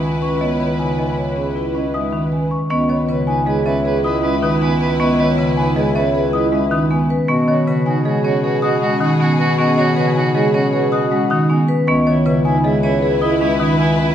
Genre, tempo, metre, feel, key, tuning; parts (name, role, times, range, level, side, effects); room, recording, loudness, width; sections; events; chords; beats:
classical, minimalist pattern music; 157 BPM; 6/4; straight; C# minor; A4 = 440 Hz
vibraphone with soft mallets; melody; 0.0-14.1 s; B4 to G#5; -24 LUFS; left 5 dB
clear soprano saxophone; second line; 0.0-14.1 s; E4 to B4; -26 LUFS; right 3 dB
marimba with medium mallets; accompaniment; 0.0-13.8 s; C#3 to C#4; -18 LUFS; equal
rich studio string section; sustained chords; 0.0-14.1 s; E4 to B4; -28 LUFS; left 3 dB
vibraphone with medium mallets; arpeggios; 0.0-14.1 s; C#4 to C#5; -22 LUFS; right 4 dB
clear bass clarinet; bass; 0.0-14.1 s; C#2 to B2; -24 LUFS; left 2 dB
celesta; arpeggios; 0.2-13.8 s; D#5 to D#6; -25 LUFS; left 3 dB
wet recital hall reverb, RT60 1.6 s; -14 LUFS; side -10 dB against mid
0.0-2.7 A section; 2.7-14.1 B section
0.0 C#m7; 7.3 G#m7/B; 11.9 C#m7
0.03 | 0.41 0.79 1.18 1.56 1.94 2.32 | 2.70 3.09 3.47 3.85 4.23 4.62 | 5.00 5.38 5.76 6.14 6.53 6.91 | 7.29 7.67 8.05 8.44 8.82 9.20 | 9.58 9.96 10.35 10.73 11.11 11.49 | 11.88 12.26 12.64 13.02 13.40 13.79